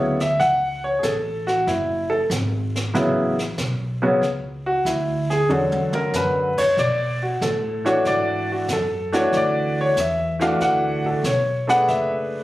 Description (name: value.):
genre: jazz piano trio.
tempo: 94 BPM.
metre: 4/4.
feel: swing 69% on 8ths.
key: F# minor.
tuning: A4 = 440 Hz.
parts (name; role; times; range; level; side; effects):
clear baby grand piano; melody; 0.0-12.4 s; C#3 to F#5; -19 LUFS; equal; none.
upright bass; bass; 0.0-12.4 s; F#1 to B2; -27 LUFS; equal; none.
jazz brush drum kit; drums; 0.2-12.4 s; brushed snare drum, crash cymbal, hi-hat, kick drum, snare drum, toms; -31 LUFS; equal; none.
room: light reverb.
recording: recorded on a phone in the room, club reverb, compression.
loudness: -19 LUFS.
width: side -16 dB against mid.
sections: 0.0-12.4 A section.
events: drum fill 5.5-6.1.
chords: 0.0 F#m7; 6.8 Bm7; 11.9 F#m7.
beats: 0.40 1.03 | 1.67 2.31 2.95 3.59 | 4.22 4.86 5.50 6.14 | 6.78 7.42 8.05 8.69 | 9.33 9.97 10.61 11.25 | 11.89.